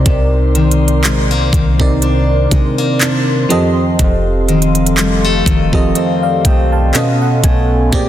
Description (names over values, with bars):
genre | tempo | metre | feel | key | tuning
contemporary R&B | 61 BPM | 4/4 | swing 54% on 16ths | C minor | A4 = 440 Hz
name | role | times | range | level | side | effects
FM electric piano | accompaniment | 0.0-8.1 s | Bb2 to A5 | -16 LUFS | right 2 dB | chorus
glassy FM pad | sustained chords | 0.0-8.1 s | A4 to D6 | -22 LUFS | left 4 dB | ensemble chorus, built-in reverb, phaser, sidechain pumping
picked steel-string acoustic guitar | arpeggios | 0.0-8.1 s | F2 to G4 | -18 LUFS | left 5 dB | none
clean 808-style bass | bass | 0.0-8.1 s | F1 to C3 | -16 LUFS | equal | none
trap drum kit | drums | 0.1-8.1 s | handclaps, hi-hat, kick drum | -15 LUFS | equal | none
room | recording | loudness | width
light reverb | dense, heavily limited modern master | -10 LUFS | side -12 dB against mid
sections
0.0-7.9 A section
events
FM electric piano fill 6.5-7.9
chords
0.0 Cm9; 3.5 F7; 6.9 B9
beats
| 0.06 1.04 2.02 3.01 | 3.99 4.97 5.96 6.94 | 7.93